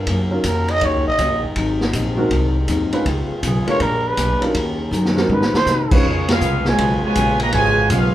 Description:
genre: jazz, big band swing.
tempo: 161 BPM.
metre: 4/4.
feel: swing 66% on 8ths.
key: unclear.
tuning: A4 = 440 Hz.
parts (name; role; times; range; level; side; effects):
warm upright piano; accompaniment; 0.0-6.0 s; Gb3 to Cb5; -23 LUFS; right 1 dB; none.
warm trombone section; sustained chords; 0.0-8.1 s; Cb3 to Bb4; -29 LUFS; left 1 dB; none.
upright bass; bass; 0.0-8.1 s; Gb1 to C3; -22 LUFS; equal; none.
archtop guitar, miked and amplified; accompaniment; 0.1-8.1 s; Ab2 to C5; -26 LUFS; left 3 dB; none.
vintage drum kit; drums; 0.1-8.0 s; crash cymbal, hi-hat, kick drum, ride cymbal, snare drum, toms; -22 LUFS; equal; none.
growling trumpet; melody; 0.5-6.0 s; Ab4 to Eb5; -20 LUFS; right 1 dB; none.
warm trumpet section; melody; 5.9-8.1 s; Cb4 to Bb5; -20 LUFS; right 1 dB; none.
warm trombone section; second line; 5.9-8.1 s; Cb3 to F4; -21 LUFS; right 2 dB; none.
room: moderate large studio reverb, RT60 1.0 s.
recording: band playing live in one room.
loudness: -15 LUFS.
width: side -13 dB against mid.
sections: 0.0-6.0 A section; 6.0-8.1 B section.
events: trumpet solo 0.0-6.0; drum fill 4.9-5.7; band accent 6.2.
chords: 0.1 Ebm7; 1.6 Ab7; 3.1 Db7; 3.8 Bb7b9; 4.5 Ebm7; 5.3 Ab7; 6.0 Db7.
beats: | 0.07 0.44 0.81 1.19 | 1.56 1.93 2.31 2.68 | 3.05 3.42 3.80 4.17 | 4.54 4.92 5.29 5.66 | 6.04 6.41 6.78 7.16 | 7.53 7.90.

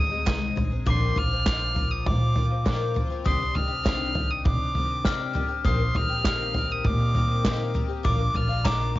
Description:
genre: indie folk with a building arrangement.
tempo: 100 BPM.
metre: 4/4.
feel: straight.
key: Eb major.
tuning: A4 = 439 Hz.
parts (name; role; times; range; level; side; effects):
warm fiddle; melody; 0.0-9.0 s; C6 to F6; -29 LUFS; right 2 dB; analog delay.
picked twelve-string acoustic guitar; accompaniment; 0.0-9.0 s; Ab2 to Ab4; -33 LUFS; left 8 dB; analog chorus, cassette tape.
upright bass; bass; 0.0-9.0 s; Bb1 to C3; -27 LUFS; right 1 dB; none.
unplugged drum kit; drums; 0.3-9.0 s; kick drum, snare drum, toms; -26 LUFS; equal; none.
group handclap; percussion; 0.3-8.8 s; none; -34 LUFS; right 9 dB; none.
glockenspiel with brass mallets; second line; 0.9-9.0 s; Bb5 to F6; -34 LUFS; left 7 dB; cassette tape.
room: light reverb.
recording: home recording on cassette, nothing above 7.5 kHz.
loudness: -22 LUFS.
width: side -16 dB against mid.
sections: 0.0-9.0 A section.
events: none.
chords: 0.0 Ab; 0.9 Bbadd9; 3.3 Cmadd9; 5.7 Eb6/Bb; 8.0 Bb.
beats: 0.27 | 0.86 1.46 2.06 2.66 | 3.26 3.86 4.46 5.06 | 5.66 6.25 6.85 7.45 | 8.05 8.65.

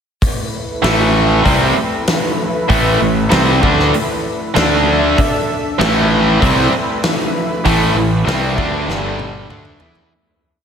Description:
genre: hard rock.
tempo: 97 BPM.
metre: 4/4.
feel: straight.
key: unclear.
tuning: A4 = 440 Hz.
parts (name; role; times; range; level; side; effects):
lush unison pad; sustained chords; 0.2-10.1 s; G3 to E5; -22 LUFS; equal; chorus.
big rock drum kit; drums; 0.2-10.1 s; hi-hat, kick drum, snare drum, toms; -19 LUFS; equal; none.
distorted electric guitar; riff; 0.8-10.1 s; G2 to E4; -19 LUFS; left 8 dB; overdrive.
tight distorted guitar; riff; 0.8-10.1 s; G2 to E4; -18 LUFS; right 8 dB; distortion.
fuzz fingered electric bass; bass; 0.8-10.1 s; G1 to E2; -18 LUFS; equal; overdrive.
sludgy distorted guitar; riff; 5.8-10.1 s; G2 to E4; -21 LUFS; left 1 dB; overdrive, slapback echo.
room: wet lush hall reverb, RT60 2.5 s.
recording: big arena sound.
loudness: -12 LUFS.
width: side -7 dB against mid.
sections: 0.2-10.1 riff.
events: fade-out 7.7-10.1; drum fill 8.9-10.1.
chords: 0.2 A5; 4.6 D5; 5.8 A5; 8.9 G5; 9.5 A5.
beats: | 0.21 0.83 1.45 2.07 | 2.69 3.31 3.93 4.55 | 5.17 5.79 6.41 7.03 | 7.65 8.27 8.88 9.50.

